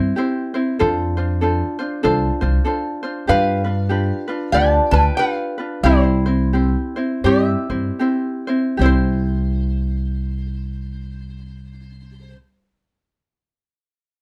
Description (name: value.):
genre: Hawaiian.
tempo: 73-97 BPM.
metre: 4/4.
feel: swing 61% on 8ths.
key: C major.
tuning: A4 = 439 Hz.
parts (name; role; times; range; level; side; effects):
ukulele; accompaniment; 0.0-12.4 s; C4 to C5; -23 LUFS; equal; none.
upright bass; bass; 0.0-12.3 s; C2 to G2; -22 LUFS; equal; none.
lap resonator guitar; melody; 3.3-12.4 s; E4 to A5; -22 LUFS; equal; none.
room: moderate studio reverb, RT60 0.6 s.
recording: dark, warm production.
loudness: -19 LUFS.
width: mono.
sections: 0.0-8.8 A section; 8.8-12.1 B section.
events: slowing down 3.3-8.8.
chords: 0.0 C; 0.8 F6; 3.3 G7; 5.8 C.